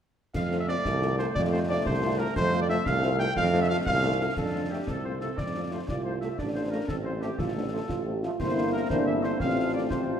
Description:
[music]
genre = military-style march for wind band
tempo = 119 BPM (dotted quarters)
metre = 6/8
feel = straight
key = F major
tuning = A4 = 440 Hz
[part]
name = mellow cornet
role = melody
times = 0.3-10.2 s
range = G4 to G5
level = -33 LUFS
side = equal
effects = none
[part]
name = warm tuba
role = bass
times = 0.3-10.2 s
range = G1 to F2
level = -29 LUFS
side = right 2 dB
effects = none
[part]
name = concert snare drum, clash cymbals and concert bass drum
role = drums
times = 0.3-10.1 s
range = none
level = -35 LUFS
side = left 1 dB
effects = none
[part]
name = mellow woodwind section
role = second line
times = 0.4-10.2 s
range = G4 to G5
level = -35 LUFS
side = left 1 dB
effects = none
[part]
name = warm trombone section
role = sustained chords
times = 0.4-10.2 s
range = C3 to C4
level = -35 LUFS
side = right 1 dB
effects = none
[part]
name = mellow French horn section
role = accompaniment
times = 0.5-10.2 s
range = A3 to F4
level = -34 LUFS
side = left 6 dB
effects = none
[part]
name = warm euphonium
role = second line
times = 4.4-10.2 s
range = C4 to G4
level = -33 LUFS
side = right 4 dB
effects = none
[sound]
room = moderate scoring stage reverb, RT60 1.7 s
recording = none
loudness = -25 LUFS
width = side -8 dB against mid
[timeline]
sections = 0.3-4.4 A section; 4.4-10.2 B section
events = none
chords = 0.3 F; 6.4 F/A; 8.4 C7/G; 9.4 F/A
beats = | 0.35 0.85 | 1.36 1.86 | 2.36 2.87 | 3.37 3.87 | 4.38 4.88 | 5.38 5.88 | 6.39 6.89 | 7.39 7.90 | 8.40 8.90 | 9.40 9.91

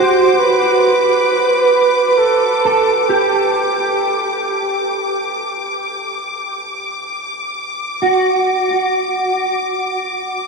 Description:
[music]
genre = ambient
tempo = free time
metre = none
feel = none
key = unclear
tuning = A4 = 442 Hz
[part]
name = warm flugelhorn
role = melody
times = 0.0-5.3 s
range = G4 to C5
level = -16 LUFS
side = right 2 dB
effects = diffuse ambient delay
[part]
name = mellow electric guitar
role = arpeggios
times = 0.0-9.3 s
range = F#4 to A4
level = -17 LUFS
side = right 2 dB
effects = ensemble chorus, diffuse ambient delay
[part]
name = warm symphonic violin section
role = texture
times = 0.0-10.5 s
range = D6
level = -22 LUFS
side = left 2 dB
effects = none
[sound]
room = wet huge ambient reverb, RT60 8.0 s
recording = dreamy mix soaked in reverb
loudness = -14 LUFS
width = side -4 dB against mid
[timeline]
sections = 0.0-10.5 A section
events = none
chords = 0.0 Csus2 (rootless); 5.8 D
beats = free time

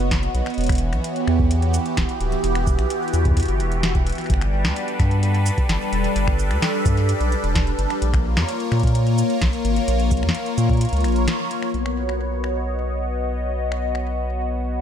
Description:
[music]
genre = IDM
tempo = 129 BPM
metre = 4/4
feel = straight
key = unclear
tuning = A4 = 440 Hz
[part]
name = phased analog pad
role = sustained chords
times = 0.0-14.8 s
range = E3 to D#5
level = -23 LUFS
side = left 1 dB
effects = phaser, chorus, sidechain pumping
[part]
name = round analog bass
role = bass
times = 0.0-14.8 s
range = D1 to A#2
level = -21 LUFS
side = equal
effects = none
[part]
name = electro analog drum machine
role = drums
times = 0.0-14.0 s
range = cabasa, finger snaps, hi-hat, snare drum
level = -28 LUFS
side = left 1 dB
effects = digital delay
[part]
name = electronic kick drum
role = drums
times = 0.1-10.8 s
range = none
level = -21 LUFS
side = equal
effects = none
[sound]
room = light reverb, digital ambience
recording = none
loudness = -18 LUFS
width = side -9 dB against mid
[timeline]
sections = 0.0-11.7 A section; 11.7-14.8 B section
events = break 11.3-11.7; band accent 11.3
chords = 0.0 Badd9; 0.6 Em; 4.3 G; 8.0 A#m; 11.7 Bmaj9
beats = 0.11 | 0.58 1.04 1.51 1.97 | 2.44 2.90 3.37 3.83 | 4.30 4.76 5.23 5.69 | 6.16 6.62 7.09 7.55 | 8.02 8.48 8.95 9.41 | 9.88 10.35 10.81 11.28 | 11.74 12.21 12.67 13.14 | 13.60 14.07 14.53

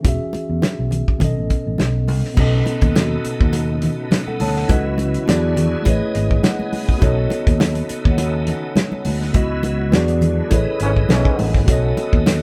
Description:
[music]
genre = lush 1970s-style soul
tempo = 103 BPM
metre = 4/4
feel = swing 54% on 16ths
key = unclear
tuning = A4 = 441 Hz
[part]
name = mellow tine electric piano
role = accompaniment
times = 0.0-12.4 s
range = B2 to A5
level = -25 LUFS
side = equal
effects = none
[part]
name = fingered electric bass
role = bass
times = 0.0-12.4 s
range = E1 to E2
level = -23 LUFS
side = equal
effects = none
[part]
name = damped 70s drum kit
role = drums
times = 0.0-12.4 s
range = crash cymbal, hi-hat, kick drum, snare drum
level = -20 LUFS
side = equal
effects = none
[part]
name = congas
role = percussion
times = 0.0-12.4 s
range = none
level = -26 LUFS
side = equal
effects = none
[part]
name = bright tonewheel organ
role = sustained chords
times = 2.4-12.4 s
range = C#3 to D#5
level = -32 LUFS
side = equal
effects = slow rotary speaker, chorus vibrato
[part]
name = vibraphone with medium mallets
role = texture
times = 2.4-12.3 s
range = D#4 to G#5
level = -35 LUFS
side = equal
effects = none
[part]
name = bright trombone section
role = stabs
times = 10.8-11.6 s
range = G#2 to C#4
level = -26 LUFS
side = equal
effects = none
[sound]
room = light reverb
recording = band playing live in one room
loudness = -18 LUFS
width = mono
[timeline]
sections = 0.0-2.4 A section; 2.4-12.4 B section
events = tine electric piano fill 5.9-7.0; band accent 9.3-11.7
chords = 0.0 E6; 1.2 B7; 2.4 B9; 4.7 C#m11; 5.3 E9; 5.9 Amaj9#11; 7.0 B9; 9.3 C#m11; 9.9 E9; 10.5 Amaj9#11; 11.7 B9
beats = | 0.04 0.62 1.21 1.79 | 2.37 2.95 3.53 4.11 | 4.70 5.28 5.86 6.44 | 7.02 7.60 8.18 8.77 | 9.35 9.93 10.51 11.09 | 11.67 12.26

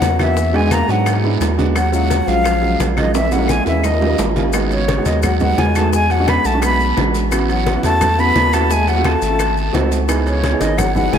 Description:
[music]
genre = Afro-Cuban jazz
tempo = 173 BPM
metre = 4/4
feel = straight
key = Eb minor, G# phrygian from 4.5 s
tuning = A4 = 440 Hz
[part]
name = breathy concert flute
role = melody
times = 0.0-11.2 s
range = C#5 to B5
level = -19 LUFS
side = left 1 dB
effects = analog delay
[part]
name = breathy trombone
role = second line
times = 0.0-11.2 s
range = C#3 to B3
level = -24 LUFS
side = left 4 dB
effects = analog delay
[part]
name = warm baby grand piano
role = accompaniment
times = 0.0-11.2 s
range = Gb3 to A4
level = -20 LUFS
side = right 2 dB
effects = none
[part]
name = saturated sub bass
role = bass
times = 0.0-11.2 s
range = E1 to G#2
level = -19 LUFS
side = equal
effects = none
[part]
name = bongos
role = percussion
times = 0.0-11.2 s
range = none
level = -28 LUFS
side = left 8 dB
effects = none
[part]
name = congas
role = percussion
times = 0.0-11.2 s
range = none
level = -27 LUFS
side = left 1 dB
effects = none
[part]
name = guiro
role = percussion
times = 0.0-11.2 s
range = none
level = -32 LUFS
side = right 12 dB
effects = none
[part]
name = maracas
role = percussion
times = 0.0-11.2 s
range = none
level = -33 LUFS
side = left 14 dB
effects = none
[part]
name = timbales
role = percussion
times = 0.0-11.2 s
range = none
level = -26 LUFS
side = right 5 dB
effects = none
[part]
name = claves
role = percussion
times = 0.2-11.0 s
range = none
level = -32 LUFS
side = left 7 dB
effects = none
[sound]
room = moderate plate reverb, RT60 3.7 s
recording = dreamy mix soaked in reverb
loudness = -13 LUFS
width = side -8 dB against mid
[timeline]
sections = 0.0-4.5 A section; 4.5-11.2 B section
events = drum fill 3.1-4.5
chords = 0.4 E9; 1.8 Ebm11; 3.1 Bbm7b5; 3.8 Eb7; 4.5 G#m7; 5.9 E13; 7.3 A6; 8.7 D#m7b5; 9.4 G#7b9; 10.1 C#m9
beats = 0.02 | 0.37 0.72 1.07 1.41 | 1.76 2.11 2.46 2.80 | 3.15 3.50 3.84 4.19 | 4.54 4.88 5.23 5.58 | 5.93 6.27 6.62 6.97 | 7.31 7.66 8.01 8.36 | 8.70 9.05 9.39 9.74 | 10.09 10.44 10.78 11.13

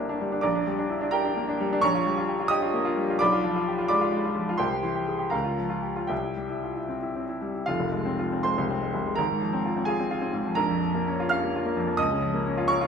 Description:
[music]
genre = classical, virtuoso piano study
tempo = 74-89 BPM (dotted quarters)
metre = 6/8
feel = rubato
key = F minor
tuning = A4 = 439 Hz
[part]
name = clear baby grand piano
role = solo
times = 0.0-12.9 s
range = F1 to F6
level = -24 LUFS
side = equal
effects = none
[sound]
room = moderate recital hall reverb, RT60 1.5 s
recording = minimal, uncompressed stereo recording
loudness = -24 LUFS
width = side -6 dB against mid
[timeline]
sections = 0.0-7.7 A section; 7.7-12.9 B section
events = none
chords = 0.5 Gm/Bb; 1.8 Gm7b5/Bb; 3.2 Bdim7; 4.6 C; 5.3 Bbm/Db; 6.1 C; 7.7 Fm; 9.2 Fm/Ab; 10.6 Bbm; 12.0 Bbm/Db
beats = | 0.45 1.14 | 1.82 2.51 | 3.20 3.90 | 4.60 5.33 | 6.11 6.90 | 7.68 8.46 | 9.18 9.88 | 10.59 11.33 | 12.01 12.70

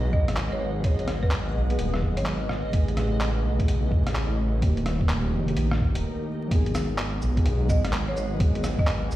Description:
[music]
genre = future garage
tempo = 127 BPM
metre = 4/4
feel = swing 64% on 16ths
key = G# phrygian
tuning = A4 = 435 Hz
[part]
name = muted felt-like synth keys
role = accompaniment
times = 0.0-9.2 s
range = C#3 to G#4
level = -32 LUFS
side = right 1 dB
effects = chorus, sidechain pumping, tape echo
[part]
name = ethereal airy pad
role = sustained chords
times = 0.0-9.2 s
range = D#3 to F#5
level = -34 LUFS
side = left 1 dB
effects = ensemble chorus, built-in reverb, sidechain pumping
[part]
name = swelling detuned saw bass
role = bass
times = 0.0-9.2 s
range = D#1 to B1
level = -26 LUFS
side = equal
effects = sidechain pumping
[part]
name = backwards swelling texture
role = texture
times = 0.0-6.0 s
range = D#5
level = -43 LUFS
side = right 4 dB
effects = built-in reverb
[part]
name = folk marimba with medium hard mallets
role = melody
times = 0.1-2.8, 7.7-9.0 s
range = B4 to D#5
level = -34 LUFS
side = right 2 dB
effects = vintage 12-bit sampler grit, tape echo
[part]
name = electronic kick drum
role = drums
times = 0.1-8.9 s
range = none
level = -23 LUFS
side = equal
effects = studio reverb
[part]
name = lo-fi sampler-style drum kit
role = drums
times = 0.3-9.2 s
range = cabasa, handclaps, hi-hat, rim click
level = -33 LUFS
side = equal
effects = studio reverb
[sound]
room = light reverb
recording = played on a big sound system in a bare room, stone room reverb, vinyl crackle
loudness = -22 LUFS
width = side -15 dB against mid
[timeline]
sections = 0.0-6.5 A section; 6.5-9.2 B section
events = stop 6.0-6.5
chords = 0.0 G#m7; 2.7 Amaj7; 4.6 D#; 6.5 G#m7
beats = 0.37 | 0.84 1.32 1.79 2.26 | 2.73 3.21 3.68 4.15 | 4.62 5.10 5.57 6.04 | 6.51 6.99 7.46 7.93 | 8.40 8.88

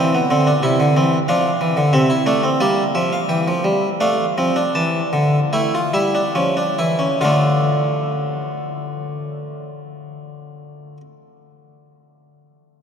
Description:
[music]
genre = classical, baroque-style 3-part fugue for harpsichord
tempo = 68-94 BPM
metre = 4/4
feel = straight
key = D minor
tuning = A4 = 440 Hz
[part]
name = harpsichord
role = solo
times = 0.0-11.0 s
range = C3 to A5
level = -16 LUFS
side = equal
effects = none
[sound]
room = wet cathedral reverb, RT60 6.4 s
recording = in a vast, echoing space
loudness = -16 LUFS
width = side -7 dB against mid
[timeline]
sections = 0.0-7.2 A section; 7.2-10.7 B section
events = slowing down 0.0-7.2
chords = 0.0 C; 1.3 F; 2.6 Gm; 4.0 Dm; 5.5 A7; 7.2 Dm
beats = 0.63 | 1.27 1.93 2.60 3.30 | 4.01 4.75 5.53 6.35 | 7.21 8.09 8.97 9.85

